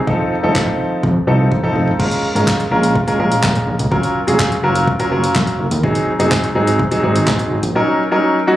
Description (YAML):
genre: dance-pop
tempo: 125 BPM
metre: 4/4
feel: straight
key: Bb minor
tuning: A4 = 441 Hz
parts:
  - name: clear baby grand piano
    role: accompaniment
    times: 0.1-8.6 s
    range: F3 to Bb4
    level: -16 LUFS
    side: equal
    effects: sidechain pumping
  - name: fat analog bass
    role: bass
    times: 0.1-7.7 s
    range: F1 to Bb2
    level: -18 LUFS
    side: equal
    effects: sidechain pumping
  - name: deep house drum kit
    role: drums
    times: 0.1-7.7 s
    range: crash cymbal, handclaps, hi-hat, kick drum, snare drum, toms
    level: -19 LUFS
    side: equal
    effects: overdrive
room: light reverb, digital ambience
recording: recorded on a phone in the room, club reverb, compression, faint mains hum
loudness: -13 LUFS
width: side -14 dB against mid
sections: 0.0-2.0 A section; 2.0-8.6 B section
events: drum fill 1.5-2.0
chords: 0.1 F7; 2.0 Bbm7; 3.9 Gbmaj7; 5.8 Ab7; 7.8 Ebm7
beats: | 0.08 0.56 1.04 1.52 | 2.00 2.48 2.96 3.44 | 3.92 4.40 4.88 5.36 | 5.84 6.32 6.80 7.28 | 7.76 8.24